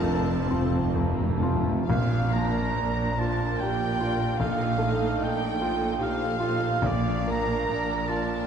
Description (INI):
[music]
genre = classical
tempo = 63-78 BPM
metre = 3/4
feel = rubato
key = Bb major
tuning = A4 = 439 Hz
[part]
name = clear concert grand piano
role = melody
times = 0.0-8.5 s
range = F1 to G4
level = -28 LUFS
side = equal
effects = none
[part]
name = rich studio violin section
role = melody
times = 0.0-8.5 s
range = Bb4 to A5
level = -41 LUFS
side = left 4 dB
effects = none
[part]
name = clear oboe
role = second line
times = 0.0-8.5 s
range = A4 to Bb5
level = -31 LUFS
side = right 2 dB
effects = none
[part]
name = mellow silver concert flute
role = second line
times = 0.0-0.9 s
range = A4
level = -43 LUFS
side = equal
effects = none
[part]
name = rich studio violin section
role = second line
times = 0.0-8.5 s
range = A3 to Bb5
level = -35 LUFS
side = left 2 dB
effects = none
[part]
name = warm symphonic viola section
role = accompaniment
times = 0.0-8.5 s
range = F3 to Bb4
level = -34 LUFS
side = right 2 dB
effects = none
[part]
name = mellow French horn section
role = sustained chords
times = 0.0-0.9 s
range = none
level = barely audible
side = none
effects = none
[part]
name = mellow trumpet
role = stabs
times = 0.0-0.9 s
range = A4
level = -41 LUFS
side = equal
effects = none
[part]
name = rich symphonic double bass section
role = bass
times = 0.0-8.4 s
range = F1 to Bb1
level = -33 LUFS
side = right 4 dB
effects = none
[part]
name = warm symphonic cello section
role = bass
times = 0.0-8.4 s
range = F2 to Bb2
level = -34 LUFS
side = right 3 dB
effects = none
[part]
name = timpani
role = percussion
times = 0.0-8.1 s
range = F2 to Bb2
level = -30 LUFS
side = equal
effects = none
[sound]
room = wet concert hall reverb, RT60 1.8 s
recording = dark, warm production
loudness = -23 LUFS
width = side -7 dB against mid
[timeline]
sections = 0.0-1.9 A section; 1.9-8.5 B section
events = timpani fill 0.0-1.9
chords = 0.0 F; 1.9 Bb; 4.4 F7/Bb; 6.8 Bb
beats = 0.02 0.94 | 1.88 2.78 3.61 | 4.41 5.21 6.01 | 6.85 7.71